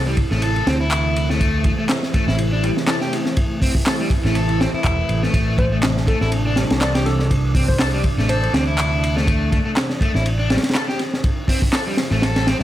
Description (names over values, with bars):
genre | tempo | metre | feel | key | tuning
breakbeat, breaks | 122 BPM | 4/4 | swing 55% on 16ths | A minor | A4 = 440 Hz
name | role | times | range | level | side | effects
phased analog pad | sustained chords | 0.0-12.6 s | C3 to E4 | -26 LUFS | right 2 dB | phaser, chorus, sidechain pumping
picked electric bass | bass | 0.0-12.6 s | E1 to D2 | -20 LUFS | equal | none
crunchy overdriven guitar | riff | 0.1-12.6 s | G3 to A4 | -24 LUFS | left 1 dB | tube saturation, tape echo
crunchy breakbeat drum kit | drums | 0.2-12.6 s | hi-hat, kick drum, ride cymbal, snare drum | -20 LUFS | equal | none
electronic handclaps | drums | 0.9-11.8 s | none | -27 LUFS | equal | none
soft struck synth lead | melody | 5.6-8.5 s | A4 to D5 | -28 LUFS | left 1 dB | chorus, old record sound, cassette tape, tape echo
riser | sound effects | 10.8-12.6 s | none | -34 LUFS | equal | none
room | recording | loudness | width
little or no reverb | none | -16 LUFS | side -13 dB against mid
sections
0.0-12.6 A section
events
none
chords
0.0 Am